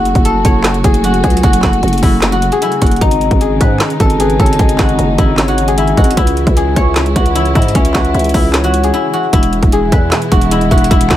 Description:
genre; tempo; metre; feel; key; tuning
hip hop, trap; 152 BPM; 4/4; half-time; C# minor; A4 = 439 Hz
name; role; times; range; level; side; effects
guzheng; melody; 0.0-11.2 s; C#4 to C#5; -16 LUFS; left 2 dB; digital delay
warm studio string section; sustained chords; 0.0-11.2 s; B2 to F#4; -19 LUFS; right 2 dB; none
growling 808-style bass; bass; 0.0-11.2 s; E1 to G#2; -15 LUFS; equal; none
trap drum kit; drums; 0.1-11.2 s; handclaps, hi-hat, kick drum, snare drum; -13 LUFS; equal; none
hollow clarinet-like synth lead; second line; 4.2-11.2 s; B4 to F#5; -24 LUFS; left 5 dB; chorus, digital delay
room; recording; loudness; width
little or no reverb; none; -9 LUFS; side -12 dB against mid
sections
0.0-9.3 A section; 9.3-11.2 A section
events
break 8.9-9.3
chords
0.0 F#m; 3.0 G#sus4; 6.2 C#m; 9.3 E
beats
0.25 0.65 1.04 | 1.43 1.83 2.22 2.62 | 3.01 3.41 3.80 4.20 | 4.59 4.99 5.38 5.78 | 6.17 6.57 6.96 7.36 | 7.75 8.14 8.54 8.93 | 9.33 9.72 10.12 10.51 | 10.91

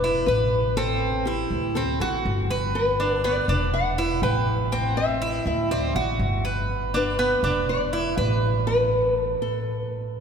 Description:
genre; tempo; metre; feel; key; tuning
latin, Cuban son and guajira; 122 BPM; 4/4; straight; unclear; A4 = 445 Hz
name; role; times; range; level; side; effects
nylon-string guitar; melody; 0.0-10.2 s; G4 to G5; -26 LUFS; left 2 dB; none
Cuban tres; arpeggios; 0.0-8.7 s; B3 to B4; -26 LUFS; right 3 dB; none
upright bass; bass; 0.0-9.3 s; E1 to D2; -26 LUFS; equal; none
room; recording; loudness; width
wet cathedral reverb, RT60 4.3 s; recorded in a church or concert hall; -21 LUFS; side -6 dB against mid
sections
0.0-10.2 A section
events
none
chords
0.0 E5; 0.8 Am7; 1.8 D7; 2.7 G; 3.7 Em7; 4.7 Am; 5.7 D7; 6.7 G; 7.7 E5; 8.7 Asus2; 9.7 N.C.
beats
0.28 | 0.77 1.26 1.76 2.25 | 2.74 3.24 3.73 4.22 | 4.72 5.21 5.71 6.20 | 6.69 7.19 7.68 8.18 | 8.67 9.16 9.66 10.15

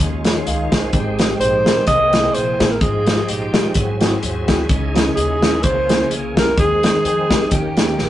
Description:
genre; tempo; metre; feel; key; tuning
uptempo gospel; 128 BPM; 4/4; swing 56% on 8ths; Ab major; A4 = 440 Hz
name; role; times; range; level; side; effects
tine electric piano; accompaniment; 0.0-8.1 s; Ab2 to Ab5; -23 LUFS; left 1 dB; medium stereo tremolo
bright tonewheel organ; sustained chords; 0.0-8.1 s; Eb3 to G5; -26 LUFS; right 1 dB; fast rotary speaker, overdrive, chorus vibrato
mellow French horn section; sustained chords; 0.0-8.1 s; Ab3 to Eb5; -29 LUFS; right 1 dB; none
upright bass; bass; 0.0-8.1 s; Ab1 to F2; -26 LUFS; equal; none
natural country drum kit; drums; 0.2-8.1 s; hi-hat, kick drum, snare drum; -18 LUFS; equal; none
breathy alto saxophone; melody; 1.4-8.1 s; G4 to D#5; -18 LUFS; equal; none
room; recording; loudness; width
moderate small room reverb, RT60 0.5 s; rough rehearsal-room recording, nothing above 10.4 kHz; -14 LUFS; side -13 dB against mid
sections
0.0-8.1 A section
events
none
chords
0.0 Eb9sus4; 0.9 Abmaj7; 1.9 C7alt; 2.8 Fm9/Ab; 3.8 Ab7b13; 4.7 Dbmadd9; 5.6 Dbm6; 6.6 Ab/Eb; 7.5 Eb7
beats
0.00 0.47 | 0.93 1.40 1.87 2.34 | 2.81 3.28 3.75 4.22 | 4.69 5.16 5.63 6.11 | 6.58 7.05 7.52 7.99

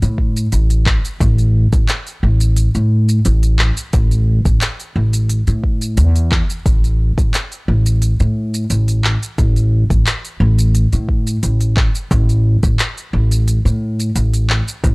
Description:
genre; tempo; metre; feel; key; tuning
organic downtempo; 88 BPM; 4/4; straight; unclear; A4 = 436 Hz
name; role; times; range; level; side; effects
upright bass; bass; 0.0-14.9 s; A1 to A2; -14 LUFS; equal; sidechain pumping
afro-pop drum kit; drums; 0.0-14.9 s; handclaps, hi-hat, shaker; -22 LUFS; equal; none
electronic kick drum; drums; 0.2-14.9 s; none; -16 LUFS; equal; none
room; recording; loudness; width
digital ambience; dry, gritty hardware recording, transformer saturation, cassette tape; -13 LUFS; side -29 dB against mid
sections
0.0-14.9 A section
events
none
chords
none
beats
0.52 | 1.20 1.88 2.57 3.25 | 3.93 4.61 5.29 5.97 | 6.66 7.34 8.02 8.70 | 9.38 10.07 10.75 11.43 | 12.11 12.79 13.47 14.16 | 14.84

